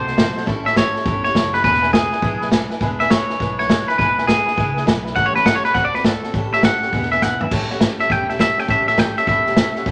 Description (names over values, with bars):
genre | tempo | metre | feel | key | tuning
rockabilly | 205 BPM | 4/4 | swing 64% on 8ths | A mixolydian | A4 = 439 Hz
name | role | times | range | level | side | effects
twangy electric guitar | melody | 0.0-9.9 s | G#4 to G5 | -20 LUFS | equal | none
picked acoustic archtop guitar | accompaniment | 0.0-9.9 s | A2 to B4 | -31 LUFS | equal | none
upright bass | bass | 0.0-9.9 s | E1 to D2 | -32 LUFS | equal | none
tack piano | accompaniment | 0.1-9.9 s | B4 to B5 | -33 LUFS | equal | none
vintage drum kit | drums | 0.1-9.9 s | crash cymbal, hi-hat, kick drum, snare drum, toms | -22 LUFS | equal | none
room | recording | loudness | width
moderate large studio reverb, RT60 1.2 s | none | -18 LUFS | mono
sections
0.0-7.5 A section; 7.5-9.9 A section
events
drum fill 7.2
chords
0.5 A7; 1.6 E7; 5.2 A7; 5.8 D7; 6.3 A7; 6.9 E7; 7.5 A7